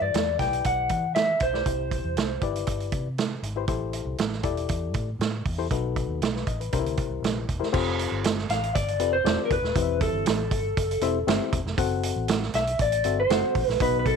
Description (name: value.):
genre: uptempo 1960s-style soul.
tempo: 119 BPM.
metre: 4/4.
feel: straight.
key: unclear.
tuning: A4 = 440 Hz.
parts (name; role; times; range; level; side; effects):
electric guitar through a small old amp; melody; 0.0-2.4, 8.5-14.2 s; A4 to G5; -25 LUFS; equal; wide subtle chorus.
barky reed electric piano; accompaniment; 0.0-14.2 s; A2 to F#5; -30 LUFS; left 12 dB; overdrive.
vintage muted fingered electric bass; bass; 0.0-14.1 s; D#1 to E3; -31 LUFS; equal; none.
vintage drum kit; drums; 0.1-14.2 s; crash cymbal, hi-hat, kick drum, snare drum; -27 LUFS; right 4 dB; none.
room: light reverb, small room ambience.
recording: 1960s-style stereo.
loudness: -23 LUFS.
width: side -6 dB against mid.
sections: 0.0-7.7 A section; 7.7-14.2 B section.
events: none.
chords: 0.0 Em7; 1.7 Cmaj7; 3.7 Am7; 5.7 B7; 6.7 C7; 7.7 Fadd9; 9.8 C/E; 11.8 F#dim.